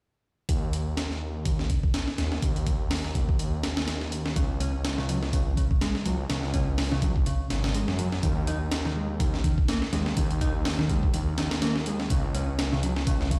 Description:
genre	breakbeat, breaks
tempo	124 BPM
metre	4/4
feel	swing 56% on 16ths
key	Eb minor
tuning	A4 = 435 Hz
part	detuned saw bass	bass	0.5-13.3 s	Ab1 to Gb2	-31 LUFS	equal	none
part	breakbeat sampler-style drum kit	drums	0.5-13.4 s	hi-hat, kick drum, snare drum	-30 LUFS	equal	none
part	mellow electric guitar	riff	4.4-13.4 s	Db3 to Eb4	-33 LUFS	equal	dub echo
room	little or no reverb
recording	played on a big sound system in a bare room, stone room reverb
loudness	-27 LUFS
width	mono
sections	0.5-13.4 A section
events	none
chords	0.5 N.C.; 4.4 Dbsus4; 8.2 Eb5; 12.1 N.C.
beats	| 0.49 0.97 1.46 1.94 | 2.43 2.91 3.39 3.88 | 4.36 4.85 5.33 5.81 | 6.30 6.78 7.26 7.75 | 8.23 8.72 9.20 9.69 | 10.17 10.65 11.14 11.62 | 12.10 12.59 13.07

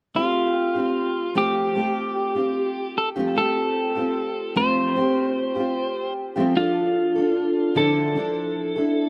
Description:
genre	pop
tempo	75 BPM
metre	4/4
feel	straight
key	F major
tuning	A4 = 440 Hz
part	fingerpicked steel-string acoustic guitar	accompaniment	0.1-9.1 s	D3 to A4	-26 LUFS	equal	double-tracked
part	electric slide guitar	melody	0.2-9.1 s	F4 to C5	-25 LUFS	equal	tape echo
room	moderate studio reverb, RT60 0.6 s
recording	lossy compression artefacts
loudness	-23 LUFS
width	mono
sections	0.1-9.1 A section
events	none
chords	0.1 Fadd9; 6.6 Dmadd9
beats	| 0.15 0.95 1.75 2.55 | 3.35 4.16 4.96 5.76 | 6.56 7.36 8.16 8.96

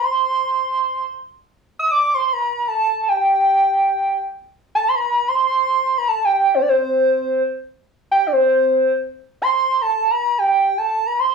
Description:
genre	Arabic maqam ensemble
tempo	free time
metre	none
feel	none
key	C maqam rast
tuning	A4 = 440 Hz
part	pure sine lead	solo	0.0-11.3 s	C5 to E6-50c	-16 LUFS	right 1 dB	chorus
room	moderate small room reverb, RT60 0.5 s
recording	studio ambience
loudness	-16 LUFS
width	side -5 dB against mid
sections	0.0-9.0 A section; 9.0-11.3 A section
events	none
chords	none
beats	free time

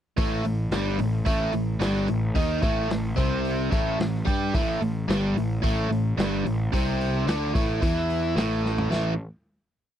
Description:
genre	blues rock power trio and southern rock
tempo	110 BPM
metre	4/4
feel	straight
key	A minor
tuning	A4 = 440 Hz
part	biting overdriven guitar	riff	0.2-9.1 s	G2 to G4	-25 LUFS	equal	none
part	fuzz picked electric bass	bass	0.2-9.2 s	G1 to G2	-28 LUFS	equal	overdrive
part	vintage drum kit	drums	0.2-9.0 s	hi-hat, kick drum, snare drum, splash cymbal, toms	-27 LUFS	equal	none
room	little or no reverb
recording	dry, close 1970s-style studio recording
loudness	-22 LUFS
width	side -10 dB against mid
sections	0.2-8.9 riff; 8.9-10.0 final chord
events	drum fill 8.6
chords	0.2 Am; 8.9 A5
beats	| 0.18 0.72 1.27 1.81 | 2.36 2.90 3.45 3.99 | 4.54 5.08 5.63 6.18 | 6.72 7.27 7.82 8.37 | 8.91

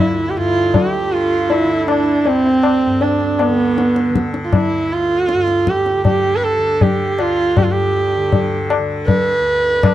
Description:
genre	indian classical, Hindustani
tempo	79 BPM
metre	4/4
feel	straight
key	D raga bageshri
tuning	A4 = 440 Hz
part	dark sarangi	melody	0.0-9.9 s	B3 to B4	-16 LUFS	right 2 dB	none
part	hand-pumped harmonium	second line	0.0-4.3 s	B3 to G4	-26 LUFS	left 3 dB	none
part	tanpura	drone	0.0-9.9 s	D2 to D3	-24 LUFS	left 1 dB	none
part	tabla	percussion	0.7-9.9 s	none	-18 LUFS	left 4 dB	none
room	light reverb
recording	dry, close 1970s-style studio recording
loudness	-13 LUFS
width	side -13 dB against mid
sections	0.0-7.6 A section; 7.6-9.9 B section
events	none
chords	none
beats	0.74 | 1.50 2.25 3.01 3.77 | 4.53 5.29 6.04 6.80 | 7.56 8.31 9.07 9.83

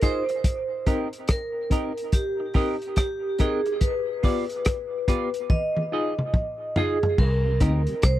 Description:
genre	dub reggae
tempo	71 BPM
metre	4/4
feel	swing 63% on 16ths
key	C minor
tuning	A4 = 440 Hz
part	vibraphone with hard mallets	melody	0.0-8.2 s	G4 to Eb5	-27 LUFS	right 1 dB	dub echo
part	semi-hollow electric guitar	accompaniment	0.0-7.8 s	F4 to Eb5	-33 LUFS	right 5 dB	wide subtle chorus, dub echo
part	reed electric piano	stabs	0.0-7.8 s	B3 to Bb4	-32 LUFS	left 4 dB	fast tremolo, dub echo
part	crunchy breakbeat drum kit	drums	0.0-8.2 s	crash cymbal, hi-hat, kick drum, rim click, toms	-23 LUFS	equal	none
part	vintage muted fingered electric bass	bass	7.2-8.2 s	C2 to D2	-22 LUFS	equal	none
part	mellow tonewheel organ	accompaniment	7.5-7.9 s	C3 to Eb4	-34 LUFS	left 1 dB	slow rotary speaker
room	light reverb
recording	dry, close 1970s-style studio recording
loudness	-22 LUFS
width	side -14 dB against mid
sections	0.0-7.2 A section; 7.2-8.2 B section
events	drum fill 5.5-7.2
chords	0.4 Cm7; 3.8 G7; 5.5 Fm7; 7.2 Cm7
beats	| 0.44 1.28 2.13 2.97 | 3.81 4.66 5.50 6.34 | 7.18 8.03

